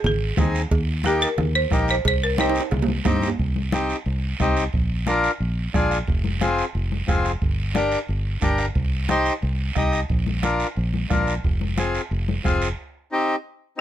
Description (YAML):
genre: latin, cumbia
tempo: 179 BPM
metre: 4/4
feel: straight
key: C minor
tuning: A4 = 443 Hz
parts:
  - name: fingered electric bass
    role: bass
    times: 0.0-12.7 s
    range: F1 to G2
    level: -24 LUFS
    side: equal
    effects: none
  - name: congas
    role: percussion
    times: 0.0-12.6 s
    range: none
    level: -29 LUFS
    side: left 4 dB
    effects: none
  - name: cowbell and timbales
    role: percussion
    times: 0.0-3.4 s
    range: none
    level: -28 LUFS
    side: right 7 dB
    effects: none
  - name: guiro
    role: percussion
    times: 0.0-12.8 s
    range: none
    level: -34 LUFS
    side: right 6 dB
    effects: none
  - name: folk marimba with hard mallets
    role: melody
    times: 0.1-3.2 s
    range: G4 to C5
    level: -24 LUFS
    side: right 1 dB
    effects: none
  - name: accordion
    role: accompaniment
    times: 0.4-13.8 s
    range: Bb3 to Eb5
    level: -22 LUFS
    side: left 2 dB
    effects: none
  - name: bombo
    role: percussion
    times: 0.4-12.6 s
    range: none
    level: -26 LUFS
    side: right 2 dB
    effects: none
room: little or no reverb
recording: close, detailed microphones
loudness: -20 LUFS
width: side -11 dB against mid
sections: 0.0-3.4 A section; 3.4-13.8 B section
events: drum fill 2.4-3.4; break 12.8-13.8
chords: 0.0 Ab; 0.7 Eb; 2.1 Cm; 4.7 Bb; 6.1 Fm; 7.4 Gm; 8.8 Cm; 10.1 Bb; 11.4 Fm; 12.8 Cm